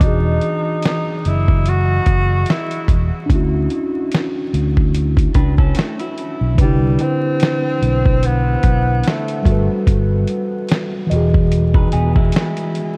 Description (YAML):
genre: lo-fi hip hop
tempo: 73 BPM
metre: 4/4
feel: swing 57% on 16ths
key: unclear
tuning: A4 = 436 Hz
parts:
  - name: breathy tenor saxophone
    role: melody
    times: 0.0-9.7 s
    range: G3 to F#4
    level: -26 LUFS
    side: equal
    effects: analog delay
  - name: mellow tine electric piano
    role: accompaniment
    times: 0.0-13.0 s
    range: D3 to D#5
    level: -23 LUFS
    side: equal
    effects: none
  - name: fingered electric bass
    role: bass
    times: 0.0-12.3 s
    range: E1 to D2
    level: -19 LUFS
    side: equal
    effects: none
  - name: dusty soul sampler-style drum kit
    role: drums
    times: 0.0-13.0 s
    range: hi-hat, kick drum, snare drum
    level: -20 LUFS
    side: equal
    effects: none
  - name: electric guitar through a small old amp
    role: second line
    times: 5.4-6.6, 11.8-13.0 s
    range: G#3 to B4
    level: -31 LUFS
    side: equal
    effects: phaser, analog delay
room: moderate huge ambient reverb, RT60 9.0 s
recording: dreamy mix soaked in reverb, vinyl crackle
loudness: -17 LUFS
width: mono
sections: 0.0-6.6 A section; 6.6-13.0 B section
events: none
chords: 0.0 Emaj9; 3.3 Dmaj9; 6.6 Cmaj9; 9.5 Gmaj9; 11.1 Emaj9